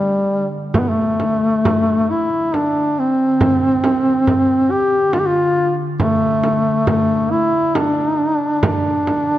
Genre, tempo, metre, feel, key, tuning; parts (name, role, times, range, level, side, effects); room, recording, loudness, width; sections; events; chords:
caucasian folk, Caucasian lament; 68 BPM; 3/4; rubato; D minor; A4 = 441 Hz
mellow duduk; melody; 0.0-9.4 s; G3 to G4; -15 LUFS; equal
evolving wavetable pad; drone; 0.0-9.4 s; D3; -28 LUFS; equal; phaser, built-in reverb
frame drum; percussion; 0.7-9.3 s; -22 LUFS; right 2 dB
wet church reverb, RT60 2.7 s; -14 LUFS; side -13 dB against mid
0.0-9.4 A section